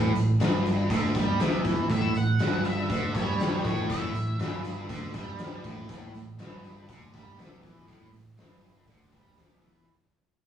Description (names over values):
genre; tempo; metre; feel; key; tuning
blues rock power trio and southern rock; 120 BPM; 4/4; straight; unclear; A4 = 442 Hz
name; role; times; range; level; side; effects
fuzz guitar; riff; 0.0-9.9 s; G2 to G3; -29 LUFS; right 1 dB; distortion
modern bright fingered electric bass; bass; 0.0-9.9 s; G1 to G2; -32 LUFS; equal; none
oversized low-tuned drum kit; drums; 0.2-9.7 s; hi-hat, kick drum, snare drum; -29 LUFS; left 1 dB; none
octave-fuzz lead guitar; melody; 1.9-4.6 s; C#5 to F#5; -35 LUFS; right 1 dB; wah, distortion, tape echo
room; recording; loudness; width
wet small room ambience, RT60 0.5 s; rough rehearsal-room recording, small room ambience; -24 LUFS; side -9 dB against mid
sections
0.0-9.9 A section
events
fade-out 0.0-9.9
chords
0.0 A5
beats
0.40 0.90 1.40 | 1.90 2.40 2.90 3.40 | 3.90 4.39 4.89 5.39 | 5.89 6.39 6.89 7.38 | 7.88 8.38 8.88 9.38